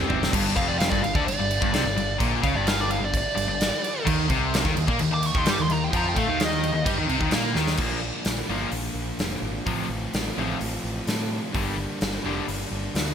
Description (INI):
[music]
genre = hard rock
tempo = 129 BPM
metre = 4/4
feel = straight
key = G minor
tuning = A4 = 440 Hz
[part]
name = overdriven electric guitar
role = riff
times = 0.0-13.1 s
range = F2 to G4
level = -31 LUFS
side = equal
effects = none
[part]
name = overdriven semi-hollow guitar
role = riff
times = 0.0-12.4 s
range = F2 to C4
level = -31 LUFS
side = right 8 dB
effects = wide subtle chorus
[part]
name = tight distorted guitar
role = riff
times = 0.0-12.4 s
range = F2 to C4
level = -30 LUFS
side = left 11 dB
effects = distortion
[part]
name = growling picked electric bass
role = bass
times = 0.0-13.1 s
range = F1 to Bb2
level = -30 LUFS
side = equal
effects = overdrive
[part]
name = big rock drum kit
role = drums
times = 0.1-13.1 s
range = crash cymbal, hi-hat, kick drum, snare drum, toms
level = -26 LUFS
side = equal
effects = gated reverb
[part]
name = dark smooth lead guitar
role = melody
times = 0.6-6.9 s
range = D5 to D6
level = -28 LUFS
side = right 1 dB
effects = overdrive
[sound]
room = light reverb, small room ambience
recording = bright 1980s-style digital production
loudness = -22 LUFS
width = side -8 dB against mid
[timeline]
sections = 0.3-7.8 A section; 7.8-13.1 B section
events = drum fill 0.0-0.3, 7.6; lead electric guitar solo 0.3-7.8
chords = 0.3 Gm; 4.1 Eb5; 7.8 Bb; 9.7 F/A; 11.5 Gm